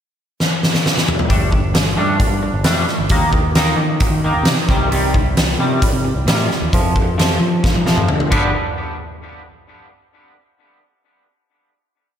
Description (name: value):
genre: quiet-loud alternative rock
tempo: 132 BPM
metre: 4/4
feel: straight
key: G minor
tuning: A4 = 441 Hz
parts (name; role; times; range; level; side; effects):
- huge arena drum kit; drums; 0.4-8.4 s; crash cymbal, hi-hat, kick drum, snare drum, toms; -16 LUFS; equal; none
- twangy electric guitar; arpeggios; 1.3-8.5 s; F2 to G4; -20 LUFS; equal; analog chorus, tape echo, slapback echo
- growling fingered electric bass; bass; 1.3-8.5 s; G1 to F3; -20 LUFS; equal; overdrive
room: moderate lush hall reverb, RT60 1.9 s, studio ambience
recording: big arena sound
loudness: -14 LUFS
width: side -9 dB against mid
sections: 0.0-1.3 pickup bar; 1.3-8.5 verse; 8.5-10.4 final hit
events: drum fill 0.4-1.3, 7.6-8.5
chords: 0.0 N.C.; 1.3 Gsus2; 3.1 Eb5; 4.7 Cm; 6.7 F5; 8.3 G; 8.5 N.C.